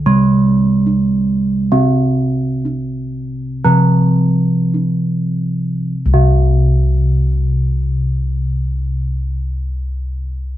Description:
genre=Javanese gamelan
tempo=48-78 BPM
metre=4/4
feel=straight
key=unclear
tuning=A4 = 440 Hz
part: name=gamelan-type bronze metallophone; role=accompaniment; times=0.0-9.4 s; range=C3 to G3+25c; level=-16 LUFS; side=right 2 dB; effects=none
part: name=gamelan-type bossed gongs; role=bass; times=0.1-9.3 s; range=C2 to D4+30c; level=-17 LUFS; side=left 1 dB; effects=none
room=little or no reverb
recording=dry, close 1970s-style studio recording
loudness=-13 LUFS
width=side -13 dB against mid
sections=0.0-5.9 A section; 5.9-10.6 B section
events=slowing down 0.0-5.9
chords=none

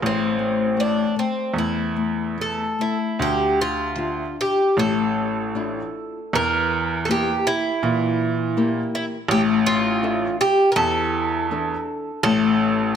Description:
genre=fado-style ballad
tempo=72-83 BPM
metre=4/4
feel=rubato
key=A minor, D minor from 3.2 s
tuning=A4 = 440 Hz
part: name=nylon-string guitar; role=accompaniment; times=0.0-13.0 s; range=D3 to E5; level=-24 LUFS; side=left 6 dB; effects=none
part: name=bright baby grand piano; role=bass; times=0.0-13.0 s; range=A1 to Bb2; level=-25 LUFS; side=right 3 dB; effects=none
part: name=Irish bouzouki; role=melody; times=0.1-12.9 s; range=C4 to Bb4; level=-22 LUFS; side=right 2 dB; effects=none
room=light reverb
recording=close, detailed microphones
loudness=-19 LUFS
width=side -8 dB against mid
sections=0.0-3.2 A section; 3.2-13.0 B section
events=none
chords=0.0 Am; 3.2 Dmadd9; 6.3 Edim; 9.3 Asus4; 12.2 N.C.

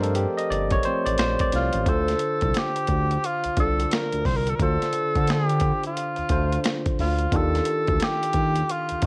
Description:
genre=R&B, neo-soul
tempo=88 BPM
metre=4/4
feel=swing 63% on 16ths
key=unclear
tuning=A4 = 440 Hz
part: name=barky tine electric piano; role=accompaniment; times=0.0-9.1 s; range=D3 to F5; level=-30 LUFS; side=equal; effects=none
part: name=smooth synth bass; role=bass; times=0.0-9.1 s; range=G1 to D3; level=-28 LUFS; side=equal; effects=none
part: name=dusty soul sampler-style drum kit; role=drums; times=0.0-9.1 s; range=finger snaps, hi-hat, kick drum, snare drum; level=-29 LUFS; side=equal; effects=overdrive
part: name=breathy tenor saxophone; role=melody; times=1.6-9.1 s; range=F4 to C5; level=-28 LUFS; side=equal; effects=none
room=little or no reverb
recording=worn, warbling old tape, cassette tape, warbly pitch drift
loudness=-23 LUFS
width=mono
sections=0.0-1.9 A section; 1.9-9.1 B section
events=tine electric piano solo 0.0-1.9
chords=0.0 G7sus4; 1.9 Dm7; 7.3 Ebmaj9#11

